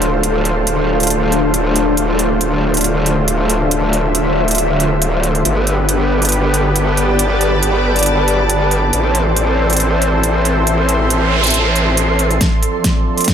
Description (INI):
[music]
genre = heavy wobble dubstep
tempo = 138 BPM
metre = 4/4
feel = half-time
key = D dorian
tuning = A4 = 440 Hz
[part]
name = supersaw pad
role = sustained chords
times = 0.0-13.3 s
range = D3 to D5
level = -18 LUFS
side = equal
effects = sidechain pumping, low-pass filter
[part]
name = growl bass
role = bass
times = 0.0-12.4 s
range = D1 to A1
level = -17 LUFS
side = equal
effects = chorus, overdrive
[part]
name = big-room dance drum kit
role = drums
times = 0.0-13.3 s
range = hi-hat, snare drum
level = -18 LUFS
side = right 2 dB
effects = none
[part]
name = ethereal airy pad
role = texture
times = 0.0-13.3 s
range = D4 to C6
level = -19 LUFS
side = left 1 dB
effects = ensemble chorus, built-in reverb, phaser, sidechain pumping
[part]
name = noise sweep and riser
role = sound effects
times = 11.0-13.3 s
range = none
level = -21 LUFS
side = right 3 dB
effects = none
[part]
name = electronic kick drum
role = drums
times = 12.4-13.3 s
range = none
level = -16 LUFS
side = equal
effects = none
[sound]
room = moderate lush hall reverb, RT60 1.9 s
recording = none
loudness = -12 LUFS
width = side -8 dB against mid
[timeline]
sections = 0.0-12.4 A section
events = noise sweep 11.0-12.4; drum fill 12.4-13.3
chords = 0.0 Dm7; 5.5 G; 8.9 Am; 12.4 Dm7